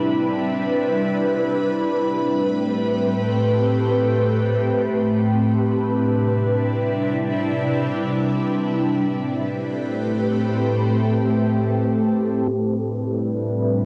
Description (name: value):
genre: hip hop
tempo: free time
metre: none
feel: none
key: C major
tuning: A4 = 437 Hz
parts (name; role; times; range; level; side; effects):
- ethereal airy pad; solo; 0.0-13.9 s; A2 to B4; -21 LUFS; equal; ensemble chorus, built-in reverb, phaser, low-pass filter, cassette tape
room: moderate small room ambience, RT60 0.5 s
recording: home recording on cassette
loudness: -21 LUFS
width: mono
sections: 0.0-12.5 A section; 12.5-13.9 B section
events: none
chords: 0.0 Cmaj9; 1.8 Am9; 5.4 Cmaj9; 8.9 Am9; 12.5 Cmaj9